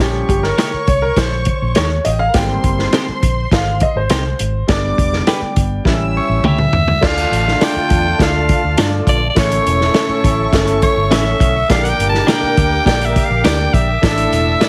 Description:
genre	uptempo 1960s-style soul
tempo	103 BPM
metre	4/4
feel	straight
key	D harmonic minor from 7.0 s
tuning	A4 = 442 Hz
part	dark studio violin section	second line	0.0-14.7 s	F4 to E6	-28 LUFS	equal	none
part	clear grand piano	accompaniment	0.0-14.7 s	A2 to G5	-22 LUFS	equal	none
part	vintage muted fingered electric bass	bass	0.0-14.5 s	E1 to G2	-21 LUFS	equal	none
part	vintage drum kit	drums	0.3-14.7 s	crash cymbal, hi-hat, kick drum, snare drum, toms	-19 LUFS	equal	none
part	twelve-string electric guitar	stabs	0.6-14.7 s	A3 to D5	-22 LUFS	equal	none
part	raspy alto saxophone	melody	6.2-14.7 s	C#5 to A5	-20 LUFS	equal	slapback echo
part	warm horn section	second line	7.0-14.7 s	A3 to Bb4	-26 LUFS	equal	none
room	small room ambience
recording	heavily compressed radio sound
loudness	-15 LUFS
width	mono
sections	0.0-7.0 A section; 7.0-14.7 B section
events	grand piano solo 0.0-7.0; drum fill 5.9-7.0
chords	0.0 Eb7; 2.3 Abmaj7; 4.7 G; 5.9 A7; 7.0 Dm; 9.4 A; 11.7 Gm; 14.0 Asus4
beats	0.58 1.17 1.76 | 2.35 2.93 3.52 4.11 | 4.69 5.28 5.86 6.45 | 7.03 7.61 8.20 8.78 | 9.36 9.95 10.53 11.11 | 11.70 12.28 12.86 13.45 | 14.03 14.61

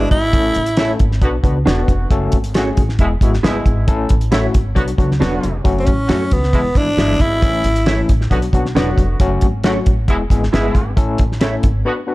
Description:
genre	uptempo 1960s-style soul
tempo	135 BPM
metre	4/4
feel	straight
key	unclear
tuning	A4 = 440 Hz
part	growling tenor saxophone	melody	0.0-1.0, 5.8-8.1 s	B3 to E4	-18 LUFS	equal	none
part	mellow horn section	second line	0.0-12.1 s	B2 to F#4	-26 LUFS	right 1 dB	none
part	overdriven tine electric piano	accompaniment	0.0-12.1 s	E3 to B4	-22 LUFS	left 3 dB	medium tremolo
part	electric guitar through a small old amp	stabs	0.0-11.5 s	C#4 to E5	-24 LUFS	right 4 dB	tremolo
part	upright bass	bass	0.0-11.8 s	E1 to F#2	-19 LUFS	equal	none
part	cloth-damped thuddy drum kit	drums	0.1-11.7 s	hi-hat, kick drum, snare drum	-16 LUFS	equal	none
room	small room ambience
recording	dark, warm production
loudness	-13 LUFS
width	side -19 dB against mid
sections	0.0-12.1 A section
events	break 11.9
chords	0.3 A; 1.2 Bm; 2.1 F#m; 3.0 E; 3.9 A; 4.8 Bm; 5.7 F#m; 6.5 E; 7.4 A; 8.3 Bm; 9.2 F#m; 10.1 E; 11.0 A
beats	| 0.34 0.78 1.22 1.66 | 2.11 2.55 2.99 3.44 | 3.88 4.32 4.76 5.21 | 5.65 6.09 6.54 6.98 | 7.42 7.87 8.31 8.75 | 9.20 9.64 10.08 10.53 | 10.97 11.41 11.85

